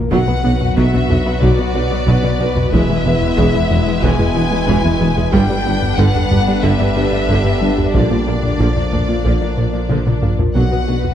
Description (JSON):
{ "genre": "cinematic, hybrid orchestral and electronic film score", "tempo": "92 BPM", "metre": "4/4", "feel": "straight", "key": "B minor", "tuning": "A4 = 441 Hz", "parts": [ { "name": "airy breathy pad", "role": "sustained chords", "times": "0.0-11.1 s", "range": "D3 to D5", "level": "-24 LUFS", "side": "equal", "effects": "chorus" }, { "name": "harp-like synth pluck", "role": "arpeggios", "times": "0.0-11.0 s", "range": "E3 to B4", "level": "-26 LUFS", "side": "left 1 dB", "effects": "none" }, { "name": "plucky analog bass", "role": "riff", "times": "0.0-11.1 s", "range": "E2 to B3", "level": "-21 LUFS", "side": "left 3 dB", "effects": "none" }, { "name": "sub bass with octave", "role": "bass", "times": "0.0-11.1 s", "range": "E1 to B1", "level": "-24 LUFS", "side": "equal", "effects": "none" }, { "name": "rich chamber violin section", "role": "melody", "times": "0.1-11.1 s", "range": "D5 to G#5", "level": "-23 LUFS", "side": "left 4 dB", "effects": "none" }, { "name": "rich symphonic violin section", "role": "second line", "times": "0.1-11.1 s", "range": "D4 to D5", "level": "-25 LUFS", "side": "left 2 dB", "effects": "none" }, { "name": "warm symphonic viola section", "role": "accompaniment", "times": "0.1-10.9 s", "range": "D3 to D4", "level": "-24 LUFS", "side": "right 2 dB", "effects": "none" }, { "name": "mellow French horn section", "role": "sustained chords", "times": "0.1-11.1 s", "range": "A#3 to F#4", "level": "-28 LUFS", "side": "left 5 dB", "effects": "none" }, { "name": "warm trombone section", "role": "sustained chords", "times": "0.1-11.1 s", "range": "B2 to G#3", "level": "-26 LUFS", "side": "right 5 dB", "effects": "none" }, { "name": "mellow tuba", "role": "bass", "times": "0.1-10.9 s", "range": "E1 to B1", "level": "-24 LUFS", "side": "right 3 dB", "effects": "none" }, { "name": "rich symphonic cello section", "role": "bass", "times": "0.1-10.9 s", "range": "E2 to B2", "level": "-24 LUFS", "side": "right 2 dB", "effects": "none" }, { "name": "warm chamber double bass section", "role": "bass", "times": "0.1-10.9 s", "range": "E1 to B1", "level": "-23 LUFS", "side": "right 3 dB", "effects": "none" }, { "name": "taiko ensemble", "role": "drums", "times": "0.1-11.1 s", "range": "none", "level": "-22 LUFS", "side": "equal", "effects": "none" } ], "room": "light reverb", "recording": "dark, warm production", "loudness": "-13 LUFS", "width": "side -10 dB against mid", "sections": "0.1-11.1 A section", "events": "drum fill 9.9-10.5", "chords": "0.1 Bm; 2.7 E; 5.3 G; 7.9 A#; 10.5 B5" }